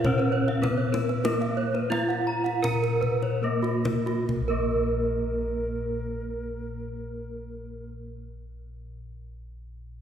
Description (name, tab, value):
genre	Balinese gamelan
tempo	66-107 BPM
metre	4/4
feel	straight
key	Bb pelog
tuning	A4 = 441 Hz
part	gamelan-type bronze metallophone	melody	0.0-8.2 s	Bb3 to Bb4	-30 LUFS	right 2 dB	none
part	bansuri	second line	0.0-7.9 s	Bb4	-37 LUFS	equal	none
part	gamelan-type bronze metallophone	arpeggios	0.0-8.2 s	Bb4 to Bb5	-33 LUFS	left 5 dB	none
part	gamelan-type bronze metallophone	arpeggios	0.0-8.1 s	Gb4-40c to Gb5-40c	-31 LUFS	right 5 dB	none
part	gamelan-type bossed gongs	bass	0.0-8.1 s	Bb1 to Bb4	-32 LUFS	left 3 dB	none
part	kendang	percussion	0.0-4.7 s	none	-33 LUFS	equal	none
room	wet church reverb, RT60 3.2 s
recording	recorded in a church or concert hall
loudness	-24 LUFS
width	side -9 dB against mid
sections	0.0-4.3 A section; 4.3-10.0 B section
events	slowing down 0.0-4.3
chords	none